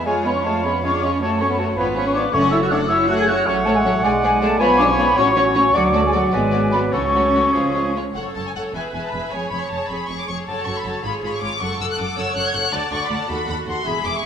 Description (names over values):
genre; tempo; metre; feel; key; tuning
quick classical-period movement for symphony orchestra; 105 BPM (dotted quarters); 6/8; rubato; F# minor; A4 = 442 Hz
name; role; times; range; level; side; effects
dark studio violin section; melody; 0.0-14.2 s; A4 to G#6; -27 LUFS; left 4 dB; none
clear clarinet; second line; 0.0-7.9 s; A4 to G#5; -26 LUFS; equal; none
mellow hollow flute section; second line; 0.0-7.9 s; F#5 to G#6; -20 LUFS; left 1 dB; none
warm studio violin section; second line; 0.0-14.2 s; E#4 to F#5; -30 LUFS; left 2 dB; none
rich studio viola section; accompaniment; 0.0-14.3 s; G#3 to D5; -29 LUFS; right 2 dB; none
warm French horn section; sustained chords; 0.0-7.9 s; F#3 to G#4; -24 LUFS; left 3 dB; none
rich studio cello section; bass; 0.0-14.1 s; D2 to G#4; -27 LUFS; right 3 dB; none
warm studio double bass section; bass; 0.0-14.1 s; E1 to F#2; -29 LUFS; right 3 dB; none
clear oboe; second line; 0.1-8.0 s; G#4 to D5; -26 LUFS; equal; none
warm bassoon; accompaniment; 0.1-7.9 s; E#3 to A3; -27 LUFS; right 1 dB; none
timpani; percussion; 2.3-2.9, 6.9-7.5, 13.9-14.3 s; E2 to C#3; -32 LUFS; right 2 dB; none
room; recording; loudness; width
wet concert hall reverb, RT60 2.0 s; none; -17 LUFS; side -8 dB against mid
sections
0.0-8.2 A section; 8.2-14.3 A section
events
none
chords
0.1 C#/E#; 1.2 F#m; 1.8 C#7/G#; 2.3 F#m; 3.5 F#m/A; 4.0 G#dim/B; 4.6 C#7/B; 5.2 F#m/A; 5.7 D; 6.3 G#m7b5; 6.9 F#m/C#; 7.6 C#; 8.2 F#m; 8.8 E; 9.3 C#/E#; 10.5 F#m; 11.0 C#; 11.6 F#m; 12.7 D; 13.3 D#dim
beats
| 0.05 0.64 | 1.21 1.77 | 2.34 2.90 | 3.47 4.04 | 4.61 5.18 | 5.75 6.33 | 6.94 7.55 | 8.16 8.75 | 9.33 9.90 | 10.48 11.05 | 11.61 12.18 | 12.73 13.30 | 13.87